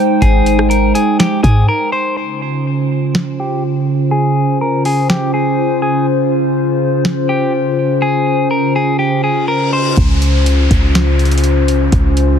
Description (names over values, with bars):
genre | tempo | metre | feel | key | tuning
hip hop, atmospheric cloud-rap | 123 BPM | 4/4 | half-time | Db lydian | A4 = 440 Hz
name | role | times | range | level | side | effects
warbly tape-like pad | sustained chords | 0.0-12.4 s | Db3 to G5 | -15 LUFS | equal | chorus, built-in reverb, sidechain pumping, low-pass filter
clean electric guitar | melody | 0.2-10.0 s | G4 to C5 | -19 LUFS | left 1 dB | low-pass filter, ping-pong delay
clean 808-style bass | bass | 0.2-1.7, 10.0-12.4 s | Ab1 to Ab2 | -12 LUFS | equal | none
booming analog drum machine | drums | 0.2-12.3 s | hi-hat, kick drum, rim click, snare drum | -15 LUFS | equal | none
reverse cymbal and downlifter | sound effects | 9.3-12.4 s | none | -23 LUFS | left 2 dB | none
room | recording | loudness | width
digital ambience | heavily compressed radio sound | -12 LUFS | side -8 dB against mid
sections
0.0-2.2 A section; 2.2-10.0 B section; 10.0-12.4 C section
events
break 1.7-2.2; filter sweep 2.2-10.0; reverse cymbal 9.3-10.0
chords
0.0 Abmaj7; 2.2 Dbmaj7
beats
| 0.22 0.70 1.19 1.68 | 2.17 2.66 3.14 3.63 | 4.12 4.61 5.09 5.58 | 6.07 6.56 7.05 7.53 | 8.02 8.51 9.00 9.49 | 9.97 10.46 10.95 11.44 | 11.93